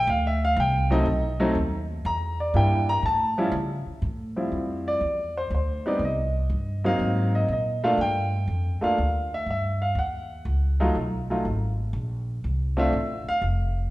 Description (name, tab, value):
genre	jazz piano trio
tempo	121 BPM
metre	4/4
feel	swing 68% on 8ths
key	unclear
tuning	A4 = 445 Hz
part	clear grand piano	melody	0.0-13.4 s	F3 to Bb5	-25 LUFS	equal	none
part	upright bass	bass	0.0-13.9 s	F1 to C#3	-26 LUFS	equal	none
room	wet recital hall reverb, RT60 1.5 s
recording	recorded in a church or concert hall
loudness	-23 LUFS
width	side -18 dB against mid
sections	0.0-4.0 A section; 4.0-13.9 B section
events	grand piano solo 0.0-4.0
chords	0.1 D5; 1.1 B; 2.1 Em7b5; 3.0 A; 4.0 Dm11; 6.0 Cm; 7.0 G#9; 8.0 G7(no3); 10.0 B; 11.9 Bbmaj7sus2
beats	| 0.08 0.57 1.07 1.56 | 2.05 2.55 3.04 3.53 | 4.03 4.52 5.02 5.51 | 6.01 6.50 7.00 7.49 | 7.99 8.48 8.98 9.47 | 9.97 10.46 10.96 11.45 | 11.95 12.44 12.94 13.43